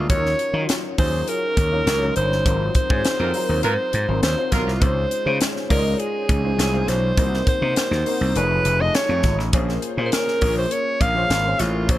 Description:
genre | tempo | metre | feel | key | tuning
polished 1980s jazz-funk pop | 102 BPM | 4/4 | straight | Bb minor | A4 = 439 Hz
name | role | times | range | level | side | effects
breathy alto saxophone | melody | 0.0-12.0 s | F4 to F5 | -23 LUFS | equal | none
warm grand piano | accompaniment | 0.0-12.0 s | Gb3 to Eb5 | -27 LUFS | left 3 dB | analog chorus
gritty slap bass | bass | 0.0-12.0 s | F1 to Eb3 | -22 LUFS | equal | overdrive
crisp fusion drum kit | drums | 0.1-12.0 s | hi-hat, kick drum, snare drum | -23 LUFS | equal | none
warm horn section | second line | 3.2-4.7 s | Gb3 to Bb4 | -26 LUFS | right 2 dB | none
room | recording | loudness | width
small room ambience | none | -18 LUFS | side -14 dB against mid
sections
0.0-12.0 A section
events
band accent 2.5-4.8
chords
0.1 Ebm7; 2.5 Ab13; 4.8 Dbmaj7; 7.2 Cm7b5; 8.4 F7alt; 9.5 Bbm9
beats
| 0.10 0.69 1.28 1.87 | 2.46 3.05 3.64 4.23 | 4.82 5.41 6.00 6.59 | 7.18 7.77 8.36 8.95 | 9.53 10.12 10.71 11.30 | 11.89

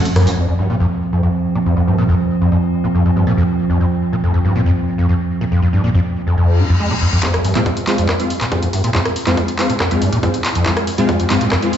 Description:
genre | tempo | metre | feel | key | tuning
driving peak-time techno | 140 BPM | 4/4 | straight | F minor | A4 = 440 Hz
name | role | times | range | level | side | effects
rave stab | stabs | 0.0-0.1, 7.2-11.7 s | Ab3 to F4 | -19 LUFS | equal | chorus, built-in reverb, vintage 12-bit sampler grit, sidechain pumping, tape echo
metallic inharmonic drone | drone | 0.0-7.3 s | F3 to C4 | -20 LUFS | right 3 dB | chorus, built-in reverb, sidechain pumping
techno drum kit | drums | 0.1-0.4, 7.2-11.8 s | handclaps, hi-hat, rim click, tambourine | -21 LUFS | equal | overdrive, high-pass filter on hats, low-pass filter on hats, high-pass filter on perc, low-pass filter on perc, high-pass filter on snare, low-pass filter on snare, high-pass filter on cymbals, low-pass filter on cymbals
screaming distorted acid line | riff | 0.3-11.6 s | F2 to Ab3 | -16 LUFS | equal | distortion, analog chorus, sidechain pumping, tape echo
reverse cymbal and riser | sound effects | 6.5-11.8 s | none | -28 LUFS | left 3 dB | none
electronic kick drum | drums | 7.2-11.6 s | none | -24 LUFS | equal | overdrive, high-pass filter on kick
room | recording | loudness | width
moderate plate reverb, RT60 1.1 s, digital ambience | played on a big sound system in a bare room, large studio reverb, nothing above 7.9 kHz | -14 LUFS | side -9 dB against mid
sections
0.4-7.2 A section; 7.2-11.8 B section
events
break 0.0-0.4; band accent 0.2; filter sweep on acid bass 0.4-7.2; reverse cymbal 6.5-7.2; build-up 7.2-11.8; drum fill 7.2-11.8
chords
0.4 F5; 7.2 Fm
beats
| 0.37 0.80 1.23 1.66 | 2.09 2.52 2.95 3.37 | 3.80 4.23 4.66 5.09 | 5.52 5.95 6.37 6.80 | 7.23 7.66 8.09 8.52 | 8.95 9.37 9.80 10.23 | 10.66 11.09 11.52

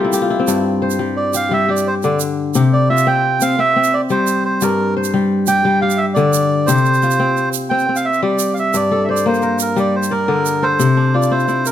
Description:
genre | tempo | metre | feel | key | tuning
west african traditional, West African string and xylophone music | 116 BPM (dotted quarters) | 12/8 | straight | G dorian | A4 = 440 Hz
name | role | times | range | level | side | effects
kora | arpeggios | 0.0-11.7 s | G2 to D5 | -16 LUFS | left 3 dB | none
tube shaker | percussion | 0.1-11.7 s | none | -26 LUFS | right 13 dB | none
melodica | melody | 1.2-11.7 s | Bb4 to G5 | -17 LUFS | right 3 dB | none
room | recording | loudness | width
moderate recital hall reverb, RT60 1.5 s | close, detailed microphones | -13 LUFS | side -11 dB against mid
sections
0.0-8.7 A section; 8.7-11.7 B section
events
kora fill 0.0-0.5; melodica solo 0.0-8.7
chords
0.5 G5; 2.5 C; 4.6 G5; 6.7 C5; 8.7 Gm; 10.8 C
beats
| 0.48 1.00 1.51 2.03 | 2.55 3.07 3.58 4.10 | 4.62 5.14 5.65 6.17 | 6.68 7.20 7.71 8.23 | 8.74 9.26 9.77 10.29 | 10.80 11.31

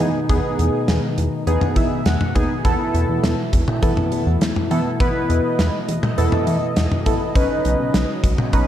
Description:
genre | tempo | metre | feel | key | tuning
synth-pop | 102 BPM | 4/4 | straight | unclear | A4 = 439 Hz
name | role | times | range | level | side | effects
warm analog keys | accompaniment | 0.0-8.7 s | B3 to G#5 | -22 LUFS | equal | chorus, phaser
brassy analog pad | sustained chords | 0.0-8.7 s | B2 to D#5 | -25 LUFS | equal | chorus, phaser
chorused synth bass | bass | 0.0-8.6 s | A1 to E3 | -21 LUFS | equal | none
gated 80s drum kit | drums | 0.0-8.7 s | hi-hat, kick drum, snare drum, toms | -20 LUFS | equal | none
room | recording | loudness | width
moderate lush hall reverb, RT60 2.2 s | dark, warm production | -17 LUFS | side -11 dB against mid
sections
0.0-8.7 A section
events
synth keys fill 1.5-2.6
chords
0.0 G#m/E; 2.6 Asus2/E; 7.4 Badd9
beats
| 0.29 0.88 1.47 2.06 | 2.65 3.24 3.83 4.41 | 5.00 5.59 6.18 6.77 | 7.35 7.94 8.53

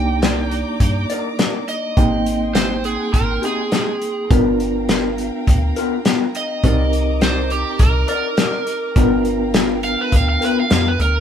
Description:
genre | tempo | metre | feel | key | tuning
straight-eighth soul blues | 103 BPM | 4/4 | straight | C minor | A4 = 440 Hz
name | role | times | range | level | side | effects
overdriven slide guitar | second line | 0.0-11.2 s | G4 to G5 | -22 LUFS | right 2 dB | none
reed electric piano | accompaniment | 0.0-11.2 s | Bb3 to G5 | -22 LUFS | right 1 dB | overdrive, fast tremolo
dark studio string section | sustained chords | 0.0-11.2 s | Ab4 to D6 | -31 LUFS | equal | none
metallic FM bass | bass | 0.0-11.2 s | G1 to G2 | -21 LUFS | equal | none
electric guitar through a small old amp | stabs | 0.2-10.9 s | G3 to D5 | -22 LUFS | left 6 dB | none
warm soul drum kit | drums | 0.2-11.1 s | hi-hat, kick drum, snare drum | -18 LUFS | equal | none
room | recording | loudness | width
light reverb | band playing live in one room | -15 LUFS | side -8 dB against mid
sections
0.0-11.2 A section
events
electric slide guitar solo 0.0-11.2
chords
0.0 Cm9; 2.0 Abmaj7; 4.3 G7#9; 6.6 Cm9; 9.0 G7#9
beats
0.22 0.80 1.39 | 1.97 2.56 3.14 3.72 | 4.30 4.89 5.47 6.05 | 6.64 7.22 7.80 8.38 | 8.96 9.55 10.13 10.71

